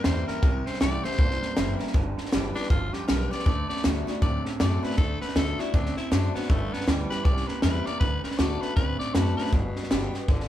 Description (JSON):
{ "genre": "rockabilly", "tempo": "158 BPM", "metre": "4/4", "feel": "swing 61% on 8ths", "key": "G major", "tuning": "A4 = 440 Hz", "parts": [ { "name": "growling tenor saxophone", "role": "melody", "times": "0.0-10.5 s", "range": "B2 to D5", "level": "-33 LUFS", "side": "left 3 dB", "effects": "none" }, { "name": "picked steel-string acoustic guitar", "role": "accompaniment", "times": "0.0-10.5 s", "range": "G2 to G4", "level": "-33 LUFS", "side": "left 3 dB", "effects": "none" }, { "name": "electric guitar through a small old amp", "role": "riff", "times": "0.0-9.5 s", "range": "G2 to C4", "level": "-35 LUFS", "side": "right 4 dB", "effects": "none" }, { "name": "compact cocktail drum kit", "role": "drums", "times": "0.0-10.5 s", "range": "hi-hat, kick drum, snare drum", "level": "-26 LUFS", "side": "equal", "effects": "none" }, { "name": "upright bass", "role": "bass", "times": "0.1-10.5 s", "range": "F#1 to F#2", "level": "-29 LUFS", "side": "equal", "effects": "none" } ], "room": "light reverb", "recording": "band playing live in one room", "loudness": "-23 LUFS", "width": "side -12 dB against mid", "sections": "0.0-9.5 A section", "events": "tenor saxophone solo 0.0-9.5", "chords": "0.0 C; 1.9 G; 3.5 D; 6.5 G; 7.3 C; 8.0 D; 9.5 G" }